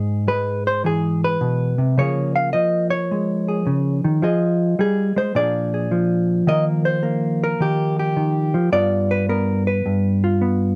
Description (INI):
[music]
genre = solo jazz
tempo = 106 BPM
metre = 4/4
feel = swing 67% on 8ths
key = unclear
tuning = A4 = 440 Hz
[part]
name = hollow-body jazz guitar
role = solo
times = 0.0-10.8 s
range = G2 to F5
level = -20 LUFS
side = equal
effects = none
[sound]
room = little or no reverb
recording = close, detailed microphones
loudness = -20 LUFS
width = mono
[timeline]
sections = 0.0-10.8 A section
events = none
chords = 0.0 Abaug; 2.0 Db6; 4.2 Fm9; 5.3 Bb7; 6.5 Eb69; 8.7 G7